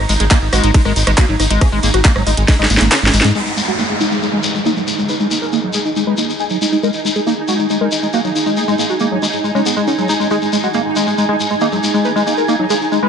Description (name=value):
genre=psychedelic trance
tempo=138 BPM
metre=4/4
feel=straight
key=unclear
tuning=A4 = 440 Hz
part: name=wide unison lead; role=melody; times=0.0-13.1 s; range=G#3 to B4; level=-20 LUFS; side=left 1 dB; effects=phaser, sidechain pumping, tape echo
part: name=pulsing gated texture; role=sustained chords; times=0.0-13.1 s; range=D#4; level=-23 LUFS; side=right 5 dB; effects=chorus, built-in reverb, sidechain pumping
part: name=round analog bass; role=bass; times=0.0-3.3 s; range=G#1 to G#2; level=-16 LUFS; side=equal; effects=none
part: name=liquid acid bass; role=riff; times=0.1-13.1 s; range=F#3 to D#4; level=-19 LUFS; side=moving between left 4 dB and right 5 dB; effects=chorus, auto-pan, sidechain pumping, digital delay
part: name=garage drum kit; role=drums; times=0.1-3.3 s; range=handclaps, hi-hat, ride cymbal, rim click, snare drum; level=-16 LUFS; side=equal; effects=overdrive, low-pass filter on snare, studio ambience, low-pass filter on hats, low-pass filter on cymbals
part: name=shekere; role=percussion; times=0.1-13.0 s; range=none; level=-22 LUFS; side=left 4 dB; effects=none
part: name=electronic kick drum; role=drums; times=0.3-2.6 s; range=none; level=-11 LUFS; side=equal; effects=overdrive, studio ambience
part: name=downlifter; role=sound effects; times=3.4-6.8 s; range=none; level=-23 LUFS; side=right 1 dB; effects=none
part: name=granular cloud pad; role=texture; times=4.6-13.1 s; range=D#4 to G#5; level=-23 LUFS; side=right 2 dB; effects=built-in reverb, sidechain pumping
room=light reverb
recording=nothing above 10.7 kHz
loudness=-13 LUFS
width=side -7 dB against mid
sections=0.0-3.4 A section; 3.4-13.1 B section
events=drop 0.0-3.4; drum fill 2.5-3.4; kick drops out 2.9-3.4; filter sweep on acid bass 3.4-13.1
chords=0.0 G#5